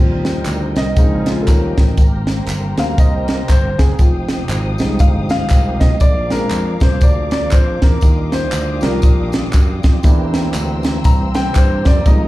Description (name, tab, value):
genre	uptempo gospel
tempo	119 BPM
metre	4/4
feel	swing 60% on 8ths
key	Eb major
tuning	A4 = 440 Hz
part	warm grand piano	accompaniment	0.0-12.3 s	Db3 to Bb5	-21 LUFS	left 1 dB	plate reverb, slapback echo
part	muted studio string section	sustained chords	0.0-12.3 s	Bb4 to E6	-31 LUFS	left 4 dB	plate reverb
part	tonewheel organ	sustained chords	0.0-12.3 s	Db3 to Bb4	-27 LUFS	right 3 dB	slow rotary speaker, overdrive, chorus vibrato
part	fingered electric bass	bass	0.0-12.3 s	F1 to G2	-20 LUFS	equal	none
part	crisp fusion drum kit	drums	0.2-12.2 s	hi-hat, kick drum, snare drum	-13 LUFS	equal	none
part	tambourine and handclaps	percussion	0.3-12.2 s	none	-31 LUFS	equal	slapback echo
room	little or no reverb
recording	live gig heard through the venue's PA, club reverb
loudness	-12 LUFS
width	side -17 dB against mid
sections	0.0-12.3 A section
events	grand piano solo 0.0-12.3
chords	0.0 Eb6; 1.0 Bbm7; 1.5 Eb9; 2.0 Abmaj9; 4.0 Fm9; 6.0 Bb7; 8.0 Ebmaj9; 10.0 C7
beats	0.47 0.97 1.47 | 1.98 2.48 2.98 3.49 | 3.99 4.50 5.00 5.50 | 6.01 6.51 7.02 7.52 | 8.03 8.53 9.03 9.54 | 10.04 10.55 11.05 11.55 | 12.06